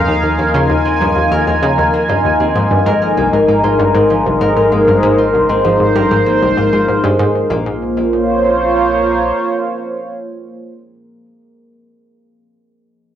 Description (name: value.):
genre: ambient, sequencer-driven space music.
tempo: 97 BPM.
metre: 4/4.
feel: straight.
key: Bb minor.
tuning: A4 = 439 Hz.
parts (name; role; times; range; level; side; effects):
sweeping resonant pad; sustained chords; 0.0-10.7 s; Ab3 to Ab5; -13 LUFS; equal; chorus.
concert harp; arpeggios; 0.0-10.7 s; F3 to Bb4; -21 LUFS; equal; auto-pan, ping-pong delay.
round analog bass; bass; 0.0-9.3 s; Ab1 to Eb2; -27 LUFS; equal; tube saturation.
analog pluck; riff; 0.1-7.8 s; Bb1 to Db3; -17 LUFS; equal; chorus, ping-pong delay.
room: wet studio ambience, RT60 0.5 s.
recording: home recording on cassette.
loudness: -11 LUFS.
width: side -10 dB against mid.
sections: 0.0-7.5 A section; 7.5-10.0 B section.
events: none.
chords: 0.0 Ebsus4; 2.6 Abadd9; 7.5 Bbm.